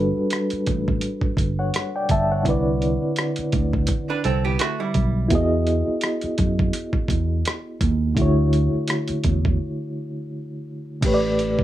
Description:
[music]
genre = R&B, neo-soul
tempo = 84 BPM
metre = 4/4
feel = swing 56% on 16ths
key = unclear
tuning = A4 = 439 Hz
[part]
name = reed electric piano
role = accompaniment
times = 0.0-11.6 s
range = A2 to A5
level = -24 LUFS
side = equal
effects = fast tremolo
[part]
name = fingered electric bass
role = bass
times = 0.0-11.6 s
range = G1 to F#2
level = -22 LUFS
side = right 1 dB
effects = none
[part]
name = dusty soul sampler-style drum kit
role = drums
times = 0.3-11.6 s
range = crash cymbal, hi-hat, kick drum, rim click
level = -24 LUFS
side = right 1 dB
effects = overdrive
[part]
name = archtop guitar, miked and amplified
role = second line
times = 4.1-5.3 s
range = G3 to B4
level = -24 LUFS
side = right 8 dB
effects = none
[sound]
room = light reverb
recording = none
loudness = -19 LUFS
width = side -13 dB against mid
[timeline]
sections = 0.0-11.0 A section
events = break 9.6-11.0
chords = 0.0 Gmaj9; 2.5 Cmaj9; 5.3 Emaj9; 8.2 Dmaj9; 11.0 A9sus4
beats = 0.31 1.02 1.74 | 2.45 3.17 3.88 4.60 | 5.31 6.02 6.74 7.45 | 8.17 8.88 9.60 10.31 | 11.02

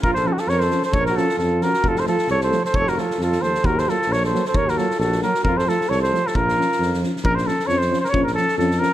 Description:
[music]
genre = balkan folk, Balkan brass band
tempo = 133 BPM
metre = 2/4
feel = swing 53% on 16ths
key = Bb harmonic minor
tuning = A4 = 440 Hz
[part]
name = mellow trumpet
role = melody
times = 0.0-8.9 s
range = Gb4 to Db5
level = -21 LUFS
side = left 1 dB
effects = none
[part]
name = mellow flugelhorn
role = second line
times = 0.0-7.0 s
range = Eb4 to Bb4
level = -26 LUFS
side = right 6 dB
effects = none
[part]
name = mellow tuba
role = bass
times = 0.0-8.8 s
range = F1 to F2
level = -24 LUFS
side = equal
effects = none
[part]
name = loose indie drum kit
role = percussion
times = 0.0-8.9 s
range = kick drum, snare drum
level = -27 LUFS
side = equal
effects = none
[part]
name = mellow euphonium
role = accompaniment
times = 0.2-8.9 s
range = A3 to Db4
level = -29 LUFS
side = left 5 dB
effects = none
[part]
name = mellow trombone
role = accompaniment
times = 0.2-8.9 s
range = F3 to Gb3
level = -29 LUFS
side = right 5 dB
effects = none
[sound]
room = light reverb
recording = none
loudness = -18 LUFS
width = side -13 dB against mid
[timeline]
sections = 0.0-7.2 A section; 7.2-8.9 A section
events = none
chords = 0.0 Bbm; 1.8 F; 3.6 Ebm; 5.4 F; 6.3 Bbm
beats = | 0.03 0.48 | 0.93 1.39 | 1.84 2.29 | 2.74 3.19 | 3.64 4.09 | 4.54 4.99 | 5.44 5.89 | 6.34 6.79 | 7.24 7.68 | 8.13 8.58

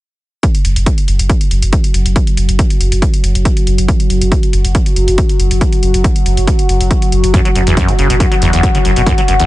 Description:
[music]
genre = driving peak-time techno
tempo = 139 BPM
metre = 4/4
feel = straight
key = unclear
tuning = A4 = 439 Hz
[part]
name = analog drone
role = drone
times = 1.6-9.5 s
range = F#3 to F#4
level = -18 LUFS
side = left 1 dB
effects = chorus, sidechain pumping
[part]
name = electronic hi-hat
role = drums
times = 0.4-9.5 s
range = none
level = -23 LUFS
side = left 1 dB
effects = sidechain pumping on hats
[part]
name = electronic kick drum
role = drums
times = 0.4-9.2 s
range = none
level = -12 LUFS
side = equal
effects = overdrive
[part]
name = saturated sub bass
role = bass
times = 0.6-9.5 s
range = F#1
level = -13 LUFS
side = equal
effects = sidechain pumping, low-pass filter
[part]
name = acid bass, saw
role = riff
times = 7.3-9.5 s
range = E2 to F#3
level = -14 LUFS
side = equal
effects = lush chorus, sidechain pumping, dub echo
[sound]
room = little or no reverb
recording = nothing above 10.6 kHz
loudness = -10 LUFS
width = side -17 dB against mid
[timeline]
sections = 0.4-9.5 A section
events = none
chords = none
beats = | 0.43 0.86 1.30 1.73 | 2.16 2.59 3.02 3.45 | 3.89 4.32 4.75 5.18 | 5.61 6.04 6.48 6.91 | 7.34 7.77 8.20 8.63 | 9.07

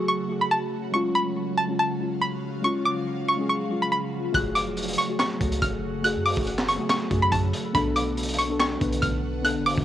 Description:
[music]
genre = hip hop, trap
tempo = 141 BPM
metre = 4/4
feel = half-time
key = F# harmonic minor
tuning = A4 = 440 Hz
[part]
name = string-like resonator pluck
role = melody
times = 0.0-9.8 s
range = A5 to F#6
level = -25 LUFS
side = equal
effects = chorus, cassette tape
[part]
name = muted felt-like synth keys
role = accompaniment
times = 0.0-9.8 s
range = G#3 to B4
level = -29 LUFS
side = left 2 dB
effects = chorus, cassette tape
[part]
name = ethereal airy pad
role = sustained chords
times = 0.0-9.8 s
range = C#3 to F#4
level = -32 LUFS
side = right 2 dB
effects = ensemble chorus, built-in reverb, phaser, cassette tape
[part]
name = warm 808-style bass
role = bass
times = 4.3-9.8 s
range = E#1 to F#2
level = -30 LUFS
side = equal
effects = none
[part]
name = crunchy breakbeat drum kit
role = drums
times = 4.3-9.8 s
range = handclaps, hi-hat, kick drum, snare drum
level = -29 LUFS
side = equal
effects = cassette tape
[sound]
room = light reverb, small room ambience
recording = home recording on cassette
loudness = -22 LUFS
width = side -12 dB against mid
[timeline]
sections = 0.0-9.8 A section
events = none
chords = 0.0 F#madd9; 0.9 C#; 4.3 F#madd9; 7.7 Bm7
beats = 0.09 0.51 | 0.94 1.36 1.79 2.22 | 2.64 3.07 3.49 3.92 | 4.34 4.77 5.19 5.62 | 6.04 6.47 6.90 7.32 | 7.75 8.17 8.60 9.02 | 9.45

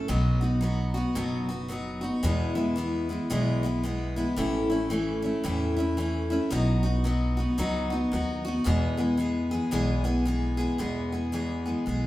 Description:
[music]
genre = honky-tonk and classic country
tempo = 112 BPM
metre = 4/4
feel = swing 61% on 8ths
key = E major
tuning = A4 = 440 Hz
[part]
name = picked steel-string acoustic guitar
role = accompaniment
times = 0.0-12.1 s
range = E2 to G#4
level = -26 LUFS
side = left 1 dB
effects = none
[part]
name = upright bass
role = bass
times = 0.1-12.1 s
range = F#1 to E2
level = -29 LUFS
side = equal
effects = none
[sound]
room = wet large studio reverb, RT60 1.4 s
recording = band playing live in one room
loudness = -25 LUFS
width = side -15 dB against mid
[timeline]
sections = 0.0-10.8 A section; 10.8-12.1 B section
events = none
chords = 0.1 B; 2.2 E; 4.4 A; 6.5 B; 8.7 E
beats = | 0.10 0.63 1.17 1.70 | 2.24 2.77 3.31 3.84 | 4.38 4.91 5.45 5.98 | 6.52 7.05 7.59 8.12 | 8.66 9.19 9.73 10.26 | 10.80 11.34 11.87

